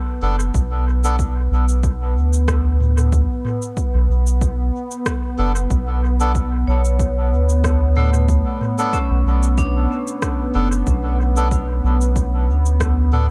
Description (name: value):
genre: ambient dub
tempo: 93 BPM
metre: 4/4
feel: swing 54% on 16ths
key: B minor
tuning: A4 = 440 Hz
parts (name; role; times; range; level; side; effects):
- deep dark ambient pad; sustained chords; 0.0-13.3 s; B3; -29 LUFS; equal; chorus, built-in reverb
- melodica; stabs; 0.2-1.2, 5.4-13.3 s; B3 to A4; -30 LUFS; equal; vintage 12-bit sampler grit, dub echo
- soft dub sub bass; bass; 0.2-13.3 s; F#1 to D2; -19 LUFS; equal; none
- organic electronic drum kit; drums; 0.4-13.3 s; cabasa, rim click, toms; -29 LUFS; equal; dub echo
- electronic kick drum; drums; 0.5-12.9 s; none; -26 LUFS; equal; none
- vibraphone with hard mallets; arpeggios; 6.7-13.3 s; A3 to C#5; -29 LUFS; equal; vintage 12-bit sampler grit, dub echo
room: little or no reverb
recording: echo-heavy mix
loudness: -18 LUFS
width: mono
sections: 0.0-13.3 A section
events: none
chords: 0.0 Bm7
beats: | 0.55 1.19 1.84 2.48 | 3.13 3.77 4.42 5.06 | 5.71 6.35 7.00 7.64 | 8.29 8.93 9.58 10.22 | 10.87 11.51 12.16 12.80